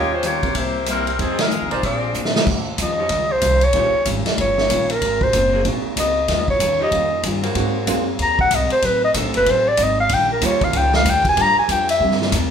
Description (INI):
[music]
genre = jazz, big band swing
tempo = 189 BPM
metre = 4/4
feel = swing 62% on 8ths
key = Eb mixolydian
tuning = A4 = 440 Hz
[part]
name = bright saxophone section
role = melody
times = 0.0-2.3 s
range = F3 to D5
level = -22 LUFS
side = left 2 dB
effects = none
[part]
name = picked steel-string acoustic guitar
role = accompaniment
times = 0.0-12.5 s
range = F2 to Bb4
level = -28 LUFS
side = left 3 dB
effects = none
[part]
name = warm grand piano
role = accompaniment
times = 0.0-1.4, 3.7-8.1, 10.4-12.5 s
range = G3 to G4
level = -27 LUFS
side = right 8 dB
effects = none
[part]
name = clear trumpet section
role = stabs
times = 0.0-1.8 s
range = F4 to Eb5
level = -27 LUFS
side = right 3 dB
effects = none
[part]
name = upright bass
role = bass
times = 0.0-12.5 s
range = Gb1 to Bb2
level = -25 LUFS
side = equal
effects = none
[part]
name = swinging big-band drum kit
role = drums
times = 0.2-12.4 s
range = crash cymbal, hi-hat, kick drum, ride cymbal, snare drum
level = -22 LUFS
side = equal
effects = none
[part]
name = breathy clarinet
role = melody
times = 2.8-12.2 s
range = Bb4 to Bb5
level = -17 LUFS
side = equal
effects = none
[part]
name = warm saxophone section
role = sustained chords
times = 3.0-11.8 s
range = F3 to A4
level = -28 LUFS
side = right 2 dB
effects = none
[sound]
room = moderate large studio reverb, RT60 0.8 s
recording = band playing live in one room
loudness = -16 LUFS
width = side -7 dB against mid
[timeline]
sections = 0.0-2.5 A section; 2.5-12.5 B section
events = band accent 1.4; drum fill 2.1-2.5; clarinet solo 2.5-12.5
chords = 0.0 Eb9; 0.6 C7; 1.2 Fm7; 1.8 Bb9; 2.5 Eb9; 5.0 Ab9; 6.3 Eb9; 7.6 Ab9; 8.8 Adim7; 10.1 Eb9; 11.4 Gm7; 12.0 C7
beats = 0.23 0.55 0.87 | 1.19 1.51 1.83 2.15 | 2.47 2.79 3.10 3.42 | 3.74 4.06 4.38 4.70 | 5.01 5.33 5.65 5.97 | 6.29 6.60 6.92 7.24 | 7.56 7.88 8.19 8.51 | 8.83 9.15 9.46 9.78 | 10.10 10.42 10.73 11.05 | 11.37 11.69 12.00 12.32